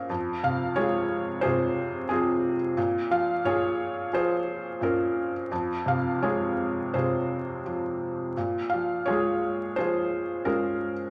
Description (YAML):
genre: classical, lyrical solo piano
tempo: 83-90 BPM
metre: 4/4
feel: rubato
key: Bb minor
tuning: A4 = 439 Hz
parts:
  - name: felt-muted upright piano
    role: solo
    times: 0.0-11.1 s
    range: F2 to F5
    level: -27 LUFS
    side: equal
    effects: none
room: moderate recital hall reverb, RT60 1.3 s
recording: vinyl crackle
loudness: -27 LUFS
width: mono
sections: 0.0-11.1 A section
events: none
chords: 0.1 Fm; 2.8 Bbm7; 5.5 Fm; 8.4 Bbm7